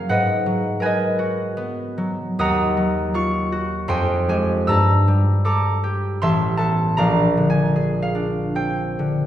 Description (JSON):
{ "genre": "classical, solo harp piece", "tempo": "78 BPM", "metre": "3/4", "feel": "uneven beats, rubato", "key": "unclear", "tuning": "A4 = 441 Hz", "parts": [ { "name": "concert harp", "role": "solo", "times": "0.0-9.3 s", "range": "A1 to E6", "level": "-18 LUFS", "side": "equal", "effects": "none" } ], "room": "wet recital hall reverb, RT60 1.6 s", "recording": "recorded in a church or concert hall", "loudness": "-18 LUFS", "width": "side -11 dB against mid", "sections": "0.0-9.3 A section", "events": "none", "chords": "0.1 G#m9; 2.4 D#madd9; 3.9 Fmadd9; 4.7 Gmadd9; 6.2 Amadd9; 7.0 A#9", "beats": "| 0.09 0.83 1.58 | 2.39 3.16 3.91 | 4.70 5.46 6.23 | 6.99 7.76 8.57" }